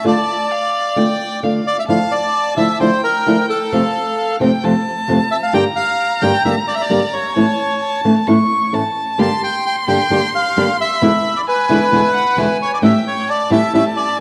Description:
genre	tango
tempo	132 BPM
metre	4/4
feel	rubato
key	D minor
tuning	A4 = 442 Hz
part	bandoneon	melody	0.0-14.2 s	A4 to A5	-20 LUFS	equal	tape echo
part	flamenco guitar	accompaniment	0.0-13.8 s	E2 to G4	-19 LUFS	equal	none
part	warm violin	second line	0.1-14.2 s	F5 to C#6	-24 LUFS	equal	none
part	bright symphonic string section	stabs	9.2-13.9 s	G#3 to G4	-29 LUFS	equal	none
room	wet large studio reverb, RT60 1.3 s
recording	none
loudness	-16 LUFS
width	mono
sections	0.0-1.9 A section; 1.9-14.2 A section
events	none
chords	0.1 Dm; 1.9 Dmadd9; 3.7 F; 5.5 Gm; 7.4 A; 9.2 Gm; 11.0 E7; 12.8 A7

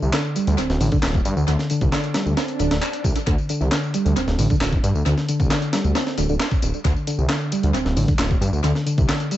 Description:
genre	breakbeat, breaks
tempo	134 BPM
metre	4/4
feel	straight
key	unclear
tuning	A4 = 440 Hz
part	reed electric piano	riff	0.0-9.4 s	D3 to C4	-23 LUFS	equal	overdrive, tube saturation, phaser, tape echo
part	detuned saw bass	bass	0.0-9.1 s	D1 to G2	-21 LUFS	equal	none
part	electronic tambourine and handclaps	drums	0.0-9.4 s	none	-30 LUFS	left 1 dB	overdrive, small room reverb, tape echo
part	breakbeat sampler-style drum kit	drums	0.1-9.4 s	hi-hat, kick drum, snare drum	-23 LUFS	equal	small room reverb, tape echo
part	swell	sound effects	2.5-3.3 s	none	-31 LUFS	right 2 dB	none
room	light reverb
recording	echo-heavy mix, nothing above 8.0 kHz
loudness	-18 LUFS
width	side -13 dB against mid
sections	0.0-9.4 A section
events	swell 2.5-3.3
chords	0.0 D7(no3)

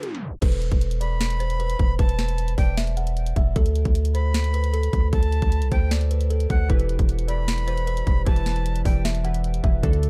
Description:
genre	hip hop, trap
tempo	153 BPM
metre	4/4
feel	half-time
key	E minor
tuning	A4 = 440 Hz
part	buzzing kalimba	melody	0.0-10.1 s	A4 to F#5	-34 LUFS	equal	low-pass filter
part	glassy digital keys	accompaniment	0.0-0.4, 6.7-10.1 s	D3 to D5	-34 LUFS	equal	chorus, low-pass filter
part	trap drum kit	drums	0.0-10.1 s	crash cymbal, hi-hat, kick drum, snare drum	-25 LUFS	equal	none
part	long sustained 808-style bass	bass	0.4-10.1 s	E1 to D2	-25 LUFS	equal	none
part	breathy bright jazz flute	second line	1.0-9.0 s	F#5 to B5	-36 LUFS	equal	tape echo
room	digital ambience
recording	dark, warm production, tape stop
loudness	-22 LUFS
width	mono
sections	0.4-10.1 A section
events	break 0.0-0.4; tape stop 0.0-0.4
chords	0.4 E5; 3.6 D5; 6.7 Em

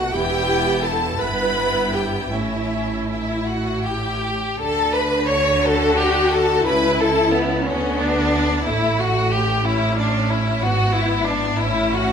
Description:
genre	classical, slow romantic movement for string orchestra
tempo	51-63 BPM (dotted quarters)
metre	6/8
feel	rubato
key	D major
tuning	A4 = 442 Hz
part	rich studio violin section	melody	0.0-12.1 s	B4 to C#6	-26 LUFS	left 4 dB	none
part	rich chamber violin section	second line	0.0-12.1 s	B3 to C#5	-21 LUFS	left 1 dB	none
part	rich chamber viola section	accompaniment	0.0-12.1 s	A3 to B4	-24 LUFS	equal	none
part	rich chamber cello section	bass	0.0-12.1 s	E2 to D3	-25 LUFS	right 2 dB	none
part	rich chamber double bass section	bass	0.0-12.1 s	E1 to D2	-28 LUFS	right 2 dB	none
room	wet recital hall reverb, RT60 1.6 s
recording	minimal, uncompressed stereo recording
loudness	-17 LUFS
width	side -7 dB against mid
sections	0.0-4.6 A section; 4.6-12.1 B section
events	none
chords	0.2 Em; 1.2 Em/G; 2.3 A; 4.6 D; 6.7 Aadd9/C#; 7.7 Bmadd9/D; 8.7 A; 10.6 E9/G#; 11.6 A

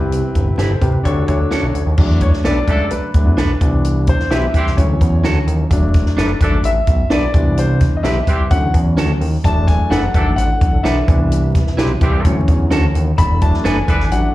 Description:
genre	uptempo 1960s-style soul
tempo	129 BPM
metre	4/4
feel	straight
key	unclear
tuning	A4 = 440 Hz
part	clear concert grand piano	accompaniment	0.0-14.3 s	E3 to B5	-20 LUFS	left 2 dB	plate reverb, slapback echo
part	percussive tonewheel organ	sustained chords	0.0-2.0, 9.4-14.3 s	C3 to C#5	-25 LUFS	right 1 dB	chorus vibrato, slow rotary speaker
part	fat analog bass	bass	0.0-14.3 s	E1 to C3	-16 LUFS	equal	none
part	compact cocktail drum kit	drums	0.1-14.2 s	crash cymbal, hi-hat, kick drum, snare drum	-17 LUFS	equal	none
part	clean electric guitar	stabs	0.6-13.8 s	C#4 to B4	-22 LUFS	right 4 dB	plate reverb, slapback echo
part	clear horn section	second line	2.4-14.0 s	E3 to B4	-24 LUFS	equal	plate reverb, slapback echo
room	little or no reverb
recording	live gig heard through the venue's PA, club reverb, vinyl crackle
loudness	-13 LUFS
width	side -16 dB against mid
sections	0.0-2.0 A section; 2.0-14.3 B section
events	grand piano solo 2.0-14.3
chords	0.0 Cmaj7; 1.0 Dmaj7; 2.0 E7sus4; 3.6 Cmaj7; 4.8 Dmaj7; 5.7 E7sus4; 7.3 Cmaj7; 8.5 Dmaj7; 9.4 E7sus4; 11.1 Cmaj7; 12.2 Dmaj7; 13.2 E7sus4

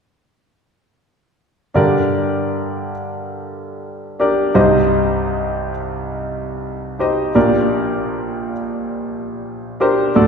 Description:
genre	pop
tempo	86 BPM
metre	4/4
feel	straight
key	G minor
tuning	A4 = 440 Hz
part	clear concert grand piano	accompaniment	1.7-10.3 s	Bb1 to Eb5	-16 LUFS	equal	none
room	wet scoring stage reverb, RT60 1.6 s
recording	recorded in a church or concert hall, lossy compression artefacts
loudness	-16 LUFS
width	side -6 dB against mid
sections	1.8-10.3 A section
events	none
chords	1.8 Gm; 4.6 Cm; 7.4 Gm/Bb

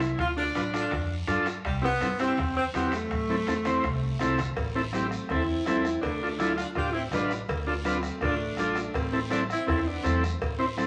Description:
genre	latin, cumbia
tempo	164 BPM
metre	4/4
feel	straight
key	A minor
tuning	A4 = 440 Hz
part	clear saxophone section	melody	0.0-10.9 s	G3 to F4	-32 LUFS	equal	none
part	upright bass	bass	0.0-10.9 s	A1 to G2	-36 LUFS	equal	none
part	bombo	percussion	0.0-10.9 s	none	-39 LUFS	equal	none
part	guiro	percussion	0.0-10.9 s	none	-47 LUFS	equal	none
part	timbales and cowbell	percussion	0.0-10.9 s	none	-42 LUFS	equal	none
part	congas	percussion	0.2-10.9 s	none	-41 LUFS	equal	none
part	combo organ	accompaniment	0.4-10.9 s	C4 to C5	-31 LUFS	equal	none
room	wet large studio reverb, RT60 1.0 s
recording	vinyl crackle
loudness	-28 LUFS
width	mono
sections	0.0-4.6 A section; 4.6-10.9 B section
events	drum fill 3.1-4.6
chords	0.2 Dm; 1.6 C; 3.1 Am; 6.0 Dm; 9.0 Am

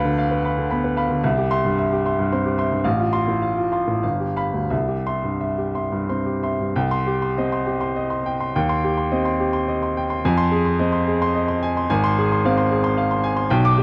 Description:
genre	classical, romantic character piece for solo piano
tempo	84-115 BPM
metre	3/4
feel	rubato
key	C major, C minor from 6.8 s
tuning	A4 = 441 Hz
part	clear upright piano	solo	0.0-13.8 s	G1 to D6	-21 LUFS	equal	none
room	light reverb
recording	dark, warm production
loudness	-21 LUFS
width	mono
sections	0.0-6.8 A section; 6.8-13.8 B section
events	none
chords	0.0 Bdim/D; 1.2 C; 2.9 F/A; 4.0 G7; 4.7 C; 6.8 Cm; 8.5 Cm/Eb; 10.2 Fm7; 11.9 Fm/Ab

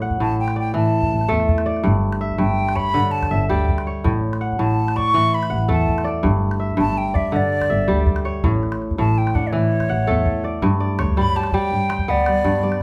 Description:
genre	west african traditional, West African string and xylophone music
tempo	109 BPM (dotted quarters)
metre	12/8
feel	straight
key	G lydian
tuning	A4 = 439 Hz
part	kora	arpeggios	0.0-12.8 s	G2 to G5	-23 LUFS	equal	none
part	muted double bass	bass	0.0-12.8 s	G1 to G3	-26 LUFS	equal	none
part	calabash	percussion	0.1-12.8 s	none	-27 LUFS	equal	none
part	breathy mellow silver concert flute	melody	0.2-12.8 s	C#5 to C#6	-25 LUFS	equal	none
room	moderate large studio reverb, RT60 0.8 s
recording	band playing live in one room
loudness	-20 LUFS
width	mono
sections	0.0-10.6 A section; 10.6-12.8 B section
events	flute solo 10.6-12.8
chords	0.0 A; 1.9 G5; 4.0 A; 6.2 G5; 8.4 A; 10.6 G

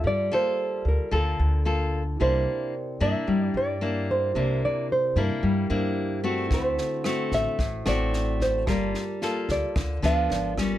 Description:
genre	bossa nova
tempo	111 BPM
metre	4/4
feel	straight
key	unclear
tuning	A4 = 437 Hz
part	nylon-string guitar	melody	0.0-10.6 s	A4 to F5	-27 LUFS	right 2 dB	none
part	mellow tine electric piano	accompaniment	0.0-10.8 s	E4 to A5	-36 LUFS	right 2 dB	lush chorus
part	nylon-string guitar	accompaniment	0.0-10.8 s	A2 to A4	-28 LUFS	left 2 dB	none
part	upright bass	bass	0.0-10.8 s	G1 to G2	-27 LUFS	equal	none
part	compact cocktail drum kit	drums	6.5-10.7 s	kick drum, rim click, snare drum	-30 LUFS	equal	none
room	light reverb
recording	none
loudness	-23 LUFS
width	side -13 dB against mid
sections	0.0-10.8 A section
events	none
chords	0.0 Gm9; 2.2 C9; 6.5 D7; 8.7 Gm9

